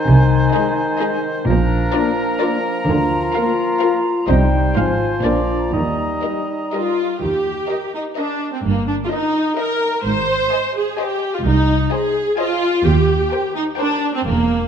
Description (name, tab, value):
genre	cinematic, playful, whimsical film cue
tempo	128 BPM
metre	3/4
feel	straight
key	Eb major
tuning	A4 = 440 Hz
part	clear oboe	second line	0.0-7.0 s	Bb4 to Eb5	-26 LUFS	right 1 dB	none
part	small flute group	second line	0.0-6.9 s	G5 to Bb5	-26 LUFS	equal	none
part	warm clarinet	second line	0.0-7.0 s	D4 to F4	-24 LUFS	left 2 dB	none
part	dark bassoon	accompaniment	0.0-7.0 s	Eb3 to G3	-26 LUFS	right 1 dB	none
part	warm studio cello section	bass	0.1-14.6 s	C2 to Eb3	-21 LUFS	right 2 dB	none
part	warm studio double bass section	bass	0.1-14.6 s	E1 to Eb2	-20 LUFS	right 1 dB	none
part	warm studio violin section	melody	0.5-14.1 s	D5 to Ab5	-30 LUFS	left 3 dB	none
part	rich studio violin section	second line	0.5-14.1 s	Ab4 to Eb5	-29 LUFS	left 2 dB	none
part	warm studio viola section	accompaniment	0.5-14.7 s	Bb3 to C5	-20 LUFS	equal	none
part	mellow French horn section	sustained chords	0.5-6.9 s	F3 to F4	-25 LUFS	left 4 dB	none
room	wet scoring stage reverb, RT60 1.5 s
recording	dark, warm production, nothing above 10.6 kHz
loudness	-16 LUFS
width	side -8 dB against mid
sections	0.0-7.2 A section; 7.2-14.7 A section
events	none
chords	0.1 Ab/C; 1.5 Bb; 2.9 Bb/D; 4.3 Cm; 4.8 Fm/Ab; 5.2 Bb; 5.7 Eb; 8.6 Eb/G; 10.1 Ab; 11.5 Ab/C; 12.9 Cm7/Eb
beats	| 0.07 0.54 1.01 | 1.48 1.95 2.42 | 2.89 3.36 3.83 | 4.29 4.77 5.25 | 5.74 6.24 6.73 | 7.23 7.71 8.18 | 8.65 9.12 9.59 | 10.05 10.52 10.99 | 11.46 11.93 12.39 | 12.86 13.32 13.79 | 14.26